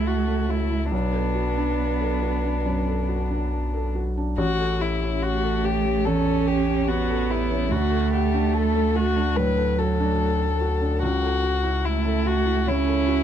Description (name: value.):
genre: neoclassical piano and strings.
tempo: 71 BPM.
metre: 4/4.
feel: uneven beats, rubato.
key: unclear.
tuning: A4 = 441 Hz.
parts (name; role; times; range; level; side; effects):
dark violin; melody; 0.0-13.2 s; D4 to B4; -26 LUFS; left 6 dB; none.
dark cello; second line; 0.0-13.2 s; F#3 to C#4; -26 LUFS; right 9 dB; none.
felt-muted upright piano; accompaniment; 0.0-13.2 s; A1 to F#5; -28 LUFS; equal; none.
punchy sub bass; bass; 0.0-13.2 s; A1 to D2; -26 LUFS; left 1 dB; none.
room: light reverb.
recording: dark, warm production.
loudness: -21 LUFS.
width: side -9 dB against mid.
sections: 0.0-4.4 A section; 4.4-13.2 A section.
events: none.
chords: 0.0 F#m7/C#; 0.9 Bm7; 4.4 A7; 7.7 D; 11.0 F#m7/C#.